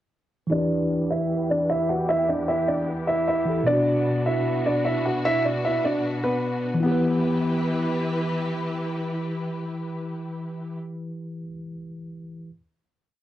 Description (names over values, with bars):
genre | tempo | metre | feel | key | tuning
hip hop, trap | 152 BPM | 4/4 | half-time | E minor | A4 = 440 Hz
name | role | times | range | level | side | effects
dark grand piano | melody | 0.5-8.0 s | B3 to F#5 | -24 LUFS | equal | low-pass filter, cassette tape, tape echo
mellow tine electric piano | accompaniment | 0.5-12.5 s | B2 to B4 | -27 LUFS | equal | medium stereo tremolo, low-pass filter
warm symphonic string section | sustained chords | 0.5-10.7 s | E2 to B4 | -32 LUFS | left 1 dB | low-pass filter
room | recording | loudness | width
moderate small room reverb, RT60 0.5 s | home recording on cassette | -22 LUFS | side -13 dB against mid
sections
0.5-6.8 breakdown; 6.8-10.0 final chord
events
filter sweep 0.5-6.8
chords
0.5 Em; 3.7 Bm; 6.8 Em